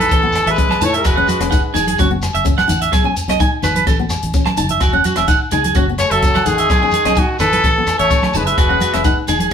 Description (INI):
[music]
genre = highlife guitar band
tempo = 128 BPM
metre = 4/4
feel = straight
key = E major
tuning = A4 = 441 Hz
[part]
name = clear trumpet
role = melody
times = 0.0-1.7, 6.0-9.2 s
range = F#4 to C#5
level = -17 LUFS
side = left 2 dB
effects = none
[part]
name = brilliant trombone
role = second line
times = 0.0-1.7, 6.0-9.3 s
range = D#3 to A3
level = -26 LUFS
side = right 2 dB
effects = none
[part]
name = nylon-string guitar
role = accompaniment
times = 0.0-9.5 s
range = B3 to D#4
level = -23 LUFS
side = left 7 dB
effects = none
[part]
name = electric guitar at the edge of break-up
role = arpeggios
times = 0.0-9.5 s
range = F#4 to A5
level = -18 LUFS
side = right 5 dB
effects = none
[part]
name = fingered electric bass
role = bass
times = 0.0-9.5 s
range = E1 to A2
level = -23 LUFS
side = equal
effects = none
[part]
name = compact cocktail drum kit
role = drums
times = 0.0-9.5 s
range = hi-hat, kick drum, rim click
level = -19 LUFS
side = equal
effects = none
[part]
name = shekere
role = percussion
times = 0.1-9.5 s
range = none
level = -27 LUFS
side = left 1 dB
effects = none
[part]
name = agogo bells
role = percussion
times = 0.3-9.4 s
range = none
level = -28 LUFS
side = left 6 dB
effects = none
[part]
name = congas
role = percussion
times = 0.7-9.5 s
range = none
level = -24 LUFS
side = right 3 dB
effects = none
[sound]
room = moderate studio reverb, RT60 0.7 s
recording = band playing live in one room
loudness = -13 LUFS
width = side -8 dB against mid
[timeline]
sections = 0.0-9.5 A section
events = none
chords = 0.1 Asus2; 1.1 Eadd9; 2.0 F#m7; 2.9 B6; 3.9 Asus2; 4.8 Eadd9; 5.8 F#m7; 6.7 B6; 7.6 Asus2; 8.6 Eadd9